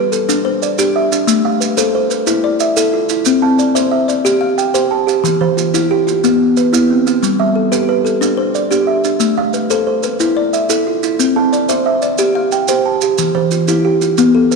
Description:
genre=southern african traditional, mbira-style interlocking cycle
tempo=121 BPM (dotted quarters)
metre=12/8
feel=straight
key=unclear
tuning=A4 = 440 Hz
part: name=kalimba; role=arpeggios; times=0.0-14.6 s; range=E3 to F5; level=-15 LUFS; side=left 7 dB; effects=none
part: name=kalimba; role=arpeggios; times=0.0-14.6 s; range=E3 to A5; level=-15 LUFS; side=right 7 dB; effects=none
part: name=maracas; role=percussion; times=0.1-14.6 s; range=none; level=-23 LUFS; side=right 11 dB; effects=none
room=wet echo chamber reverb, RT60 2.1 s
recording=1960s-style stereo with parts hard left and right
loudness=-12 LUFS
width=side -4 dB against mid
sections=0.0-14.6 A section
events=none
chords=0.0 G; 1.3 Am; 3.3 C; 5.2 Em; 7.2 G; 9.2 Am; 11.2 C; 13.2 Em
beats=0.29 0.78 | 1.28 1.78 2.27 2.77 | 3.26 3.76 4.25 4.75 | 5.25 5.74 6.24 6.73 | 7.23 7.72 8.22 8.71 | 9.21 9.71 10.20 10.70 | 11.20 11.69 12.19 12.69 | 13.19 13.69 14.18

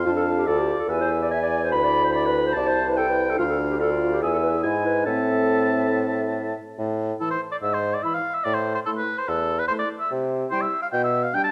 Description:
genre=quick classical-period movement for wind quintet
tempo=145 BPM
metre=4/4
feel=straight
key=A minor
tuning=A4 = 439 Hz
part: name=silver concert flute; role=melody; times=0.0-11.4 s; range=D5 to C6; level=-33 LUFS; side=equal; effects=none
part: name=clear oboe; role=second line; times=0.0-11.5 s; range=A4 to B5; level=-28 LUFS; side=equal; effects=none
part: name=clear French horn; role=accompaniment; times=0.0-11.5 s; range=E3 to F4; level=-32 LUFS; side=equal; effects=none
part: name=dark clarinet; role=accompaniment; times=0.1-11.5 s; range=D4 to E5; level=-28 LUFS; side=equal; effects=none
part: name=clear bassoon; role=bass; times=0.1-11.3 s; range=C2 to C3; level=-28 LUFS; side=equal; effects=none
room=wet recital hall reverb, RT60 1.6 s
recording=none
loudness=-23 LUFS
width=mono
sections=0.0-6.8 A section; 6.8-11.5 B section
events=none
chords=0.1 Dm/F; 0.9 E; 1.7 E5/D; 2.6 Am/C; 3.4 Dmadd11; 4.2 E; 5.1 Am; 6.8 A5; 7.6 E/G#; 8.5 Am; 10.1 C; 10.9 G/B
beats=| 0.07 0.48 0.89 1.31 | 1.72 2.13 2.55 2.96 | 3.38 3.80 4.21 4.64 | 5.07 5.50 5.93 6.36 | 6.79 7.20 7.62 8.04 | 8.46 8.87 9.28 9.70 | 10.11 10.52 10.93 11.34

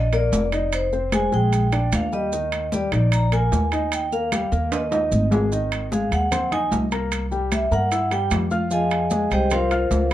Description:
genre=Afro-Cuban jazz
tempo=150 BPM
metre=4/4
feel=straight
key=Eb major, Ab major from 5.5 s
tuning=A4 = 439 Hz
part: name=vibraphone with medium hard mallets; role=melody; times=0.0-10.1 s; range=F4 to Bb5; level=-24 LUFS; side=equal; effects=none
part: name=warm grand piano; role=accompaniment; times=0.0-10.1 s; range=Eb3 to F6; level=-26 LUFS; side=left 2 dB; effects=none
part: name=upright bass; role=bass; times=0.0-10.1 s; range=F1 to G2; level=-23 LUFS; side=equal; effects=none
part: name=congas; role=percussion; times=0.1-10.1 s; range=none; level=-29 LUFS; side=left 1 dB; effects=none
part: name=maracas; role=percussion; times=0.1-10.1 s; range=none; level=-37 LUFS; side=right 5 dB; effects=none
part: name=timbales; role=percussion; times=0.1-10.1 s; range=none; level=-30 LUFS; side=right 5 dB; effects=none
room=moderate club reverb, RT60 0.5 s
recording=dark, warm production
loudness=-19 LUFS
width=side -13 dB against mid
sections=0.0-5.5 A section; 5.5-10.1 A section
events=vibraphone solo 0.0-10.1; drum fill 4.7-5.5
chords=0.0 Ebmaj7(no3); 0.7 Fm7; 1.5 Bb7; 2.3 Ebmaj9; 4.7 Eb5; 5.5 Abadd9; 7.1 C7; 8.7 Fm11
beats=0.33 | 0.72 1.12 1.52 1.92 | 2.32 2.72 3.12 3.52 | 3.92 4.32 4.72 5.12 | 5.52 5.92 6.32 6.72 | 7.12 7.52 7.92 8.31 | 8.71 9.11 9.51 9.91

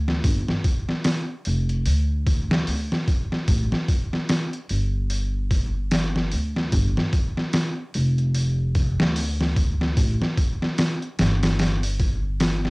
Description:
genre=trip hop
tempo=74 BPM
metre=4/4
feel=swing 60% on 16ths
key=unclear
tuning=A4 = 440 Hz
part: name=upright bass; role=bass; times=0.0-12.7 s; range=F1 to D2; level=-23 LUFS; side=equal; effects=tube saturation
part: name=trip hop sampler-style drum kit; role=drums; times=0.1-12.7 s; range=hi-hat, kick drum, snare drum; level=-22 LUFS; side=equal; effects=overdrive
room=light reverb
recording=home recording on cassette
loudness=-20 LUFS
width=side -29 dB against mid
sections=0.0-12.7 A section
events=none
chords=none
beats=| 0.24 1.05 1.86 2.67 | 3.48 4.29 5.11 5.92 | 6.73 7.54 8.35 9.16 | 9.97 10.78 11.59 12.40

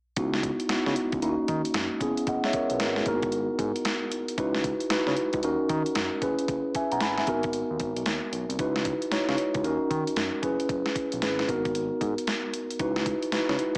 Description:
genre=R&B, new jack swing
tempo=114 BPM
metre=4/4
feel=swing 64% on 16ths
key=C# dorian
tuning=A4 = 443 Hz
part: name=mellow tine electric piano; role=accompaniment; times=0.2-13.8 s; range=A#3 to B5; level=-26 LUFS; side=equal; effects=fast stereo tremolo
part: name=smooth synth bass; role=bass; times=0.2-13.8 s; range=F#1 to D#3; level=-34 LUFS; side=equal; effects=none
part: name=crisp 8-bit digital drum machine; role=drums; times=0.2-13.8 s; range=hi-hat, kick drum, snare drum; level=-30 LUFS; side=equal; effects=overdrive
room=moderate plate reverb, RT60 1.0 s, digital ambience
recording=small speaker sound, faint mains hum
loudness=-25 LUFS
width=side -38 dB against mid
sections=0.2-13.8 A section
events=none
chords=0.2 C#m11; 1.2 D#m7; 2.0 F#9sus4; 3.1 G#m9; 4.4 C#m11; 5.4 D#m7; 6.2 F#9sus4; 7.3 G#m9; 8.6 C#m11; 9.6 D#m7; 10.4 F#9sus4; 11.5 G#m9; 12.8 C#m11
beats=| 0.17 0.69 1.22 1.75 | 2.27 2.80 3.33 3.85 | 4.38 4.90 5.43 5.96 | 6.48 7.01 7.54 8.06 | 8.59 9.12 9.64 10.17 | 10.69 11.22 11.75 12.27 | 12.80 13.32

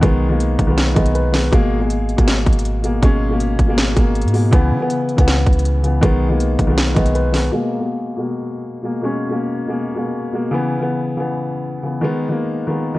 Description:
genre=hip hop, trap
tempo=160 BPM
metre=4/4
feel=half-time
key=G# minor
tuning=A4 = 444 Hz
part: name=dark grand piano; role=accompaniment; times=0.0-13.0 s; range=B2 to D#5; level=-18 LUFS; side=left 1 dB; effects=low-pass filter
part: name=warm 808-style bass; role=bass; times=0.0-7.5 s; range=G#1 to C#3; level=-18 LUFS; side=equal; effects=none
part: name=trap drum kit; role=drums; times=0.0-7.4 s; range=hi-hat, kick drum, snare drum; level=-16 LUFS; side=equal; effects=vintage 12-bit sampler grit
room=digital ambience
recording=worn, warbling old tape, cassette tape, warbly pitch drift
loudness=-15 LUFS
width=side -18 dB against mid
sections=0.0-7.5 A section; 7.5-13.0 B section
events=filter sweep on grand piano 7.5-13.0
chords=0.0 B6; 1.5 G#madd9; 4.5 C#m7; 6.0 B6; 7.5 G#madd9; 10.5 C#m7; 12.0 B6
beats=| 0.03 0.40 0.78 1.15 | 1.53 1.90 2.28 2.65 | 3.03 3.40 3.78 4.15 | 4.53 4.90 5.28 5.65 | 6.03 6.40 6.78 7.15 | 7.53 7.90 8.28 8.65 | 9.03 9.40 9.78 10.15 | 10.53 10.90 11.28 11.65 | 12.03 12.40 12.78

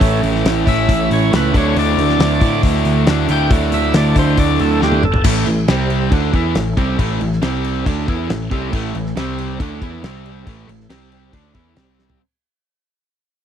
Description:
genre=classic rock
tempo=138 BPM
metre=4/4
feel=straight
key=unclear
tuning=A4 = 440 Hz
part: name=overdriven tonewheel organ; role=melody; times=0.0-5.3 s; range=C#4 to G5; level=-20 LUFS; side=left 1 dB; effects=slow rotary speaker, slapback echo
part: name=tonewheel organ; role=sustained chords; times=0.0-12.2 s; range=G3 to D5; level=-33 LUFS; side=left 1 dB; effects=none
part: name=overdriven semi-hollow guitar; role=riff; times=0.0-12.2 s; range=A2 to E4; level=-20 LUFS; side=right 11 dB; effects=none
part: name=tight distorted guitar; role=riff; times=0.0-12.2 s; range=A2 to E4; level=-22 LUFS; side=left 14 dB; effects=distortion
part: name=picked electric bass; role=bass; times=0.0-12.2 s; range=G1 to A2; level=-20 LUFS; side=left 1 dB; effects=none
part: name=damped 70s drum kit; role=drums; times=0.0-12.2 s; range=crash cymbal, hi-hat, kick drum, snare drum, toms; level=-18 LUFS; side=left 1 dB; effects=none
room=little or no reverb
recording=dry, close 1970s-style studio recording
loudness=-14 LUFS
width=side -9 dB against mid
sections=0.0-5.3 A section; 5.3-12.2 B section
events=tonewheel organ solo 0.0-5.3; drum fill 4.8-5.3, 12.0; fade-out 5.3-12.2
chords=0.0 A; 1.5 Dsus2; 5.3 A; 5.7 C5; 6.1 A; 7.4 C5; 7.9 A; 9.2 C5; 9.6 A; 10.0 C5; 10.5 A; 10.9 C5; 11.3 A; 11.8 C5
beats=| 0.02 0.45 0.89 1.33 | 1.76 2.20 2.63 3.07 | 3.51 3.94 4.38 4.82 | 5.25 5.69 6.12 6.56 | 6.99 7.43 7.86 8.30 | 8.73 9.16 9.60 10.03 | 10.47 10.90 11.33 11.77

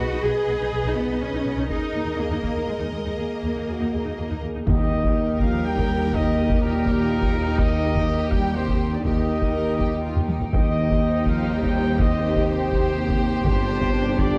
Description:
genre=cinematic, epic orchestral film score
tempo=123 BPM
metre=3/4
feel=straight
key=Eb major from 4.7 s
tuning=A4 = 441 Hz
part: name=warm symphonic violin section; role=melody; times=0.0-14.4 s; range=Bb4 to D#5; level=-41 LUFS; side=equal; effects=none
part: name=clear studio violin section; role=second line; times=0.0-14.4 s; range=Eb4 to B4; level=-36 LUFS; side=equal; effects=none
part: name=clear symphonic viola section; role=accompaniment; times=0.0-14.4 s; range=A#3 to G#4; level=-36 LUFS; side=equal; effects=none
part: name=mellow French horn section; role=sustained chords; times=0.0-14.4 s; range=Bb3 to B4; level=-34 LUFS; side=equal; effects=none
part: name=rich symphonic cello section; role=bass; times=0.0-14.4 s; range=Eb2 to G#4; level=-33 LUFS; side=equal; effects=none
part: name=rich symphonic double bass section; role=bass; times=0.0-14.4 s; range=G1 to D#2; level=-31 LUFS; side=equal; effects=none
part: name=taiko ensemble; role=drums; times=1.7-14.4 s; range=none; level=-27 LUFS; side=equal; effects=none
part: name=clear trombone section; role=sustained chords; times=4.7-14.4 s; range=Bb2 to G3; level=-33 LUFS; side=equal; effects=none
part: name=mellow woodwind section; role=sustained chords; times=4.7-14.4 s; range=D4 to G5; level=-37 LUFS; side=equal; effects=none
part: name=bright trumpet section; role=stabs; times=4.7-14.4 s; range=Bb4 to G5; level=-30 LUFS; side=equal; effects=none
part: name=mellow tuba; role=bass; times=4.7-14.4 s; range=G1 to Eb2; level=-29 LUFS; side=equal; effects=none
part: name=timpani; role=percussion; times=4.7-5.4 s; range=Eb3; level=-33 LUFS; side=equal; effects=none
part: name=impact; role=sound effects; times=4.7-6.1 s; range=none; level=-33 LUFS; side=equal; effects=none
room=wet scoring stage reverb, RT60 2.1 s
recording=dark, warm production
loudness=-23 LUFS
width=mono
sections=0.0-4.7 A section; 4.7-14.4 B section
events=impact 4.7-6.1; drum fill 10.2-10.5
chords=0.0 B; 1.7 D#sus4; 4.7 Eb; 10.5 Cm/Eb; 13.4 Gsus4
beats=| 0.24 0.73 1.21 | 1.69 2.18 2.67 | 3.17 3.67 4.17 | 4.67 5.15 5.64 | 6.13 6.61 7.09 | 7.58 8.07 8.56 | 9.05 9.54 10.03 | 10.53 11.02 11.50 | 11.99 12.47 12.96 | 13.45 13.93

